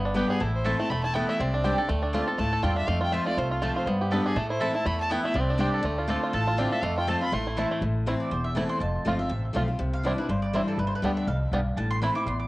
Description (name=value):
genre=bluegrass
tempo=243 BPM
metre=4/4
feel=swing 55% on 8ths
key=A minor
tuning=A4 = 440 Hz
part: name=picked steel-string acoustic guitar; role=accompaniment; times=0.0-12.5 s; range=E2 to G4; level=-29 LUFS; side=left 1 dB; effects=cassette tape
part: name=bluegrass banjo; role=arpeggios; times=0.0-12.1 s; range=A3 to A4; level=-30 LUFS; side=right 2 dB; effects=cassette tape
part: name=upright bass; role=bass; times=0.0-12.5 s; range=E1 to A2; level=-30 LUFS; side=equal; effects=none
part: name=clear fiddle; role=melody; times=0.2-7.6 s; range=F4 to C6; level=-32 LUFS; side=equal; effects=none
part: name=mandolin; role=stabs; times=0.2-12.5 s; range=A3 to D6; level=-34 LUFS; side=right 2 dB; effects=cassette tape, tape echo
room=light reverb, studio reverb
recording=home recording on cassette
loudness=-24 LUFS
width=side -19 dB against mid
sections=0.0-7.8 A section; 7.8-12.5 B section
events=mandolin solo 7.8-12.5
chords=0.4 Am; 0.9 Esus4; 1.4 Csus2; 1.9 Dm7; 2.9 F; 3.9 G; 4.4 Am; 4.9 Esus4; 5.3 Csus2; 5.8 Dm7; 6.8 F; 7.3 Am; 8.8 F; 9.8 Cadd9; 11.8 Am